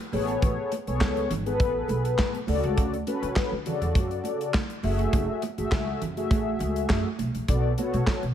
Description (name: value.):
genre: early-eighties boogie funk.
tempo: 102 BPM.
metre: 4/4.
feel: straight.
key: unclear.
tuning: A4 = 440 Hz.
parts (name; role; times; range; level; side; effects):
mellow synth brass; accompaniment; 0.1-8.2 s; C#3 to E5; -28 LUFS; left 2 dB; chorus.
upright bass; bass; 0.1-8.3 s; F#1 to D3; -29 LUFS; equal; none.
modern studio drum kit; drums; 0.1-8.3 s; handclaps, hi-hat, kick drum, snare drum; -27 LUFS; equal; none.
congas; percussion; 0.1-8.2 s; none; -36 LUFS; right 6 dB; none.
room: light reverb, small room ambience.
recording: none.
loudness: -24 LUFS.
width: side -10 dB against mid.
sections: 0.0-8.3 A section.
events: none.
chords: 0.1 Amaj9; 2.5 Dmaj7; 4.8 F#m9; 7.5 Bm7.